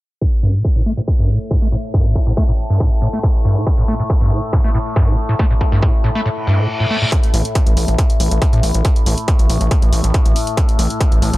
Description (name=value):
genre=driving peak-time techno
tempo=139 BPM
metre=4/4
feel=straight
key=unclear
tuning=A4 = 441 Hz
part: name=overdriven acid bass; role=riff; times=0.2-7.1 s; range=G2 to A3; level=-18 LUFS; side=equal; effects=distortion, lush chorus, sidechain pumping, analog delay
part: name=overtone-sweeping drone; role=drone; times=1.3-11.4 s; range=A2 to A3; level=-24 LUFS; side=left 2 dB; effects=chorus, built-in reverb, sidechain pumping
part: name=electronic kick drum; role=drums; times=0.2-11.1 s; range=none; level=-15 LUFS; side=equal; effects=distortion, overdrive
part: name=reverse cymbal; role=sound effects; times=6.4-7.1 s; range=none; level=-23 LUFS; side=equal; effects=none
part: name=electronic hi-hat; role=drums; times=7.1-11.4 s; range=none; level=-26 LUFS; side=left 1 dB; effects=sidechain pumping on hats
part: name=gritty driven synth bass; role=bass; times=7.3-11.4 s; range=A1 to A2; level=-16 LUFS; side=equal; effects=sidechain pumping
room=little or no reverb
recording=dry, gritty hardware recording, low-pass filter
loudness=-13 LUFS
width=side -18 dB against mid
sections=0.2-7.1 A section; 7.1-11.4 B section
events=filter sweep on acid bass 0.2-7.1; filter sweep 0.2-7.1; kick drops out 6.3-7.1; reverse cymbal 6.4-7.1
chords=0.2 Gsus2; 7.1 N.C.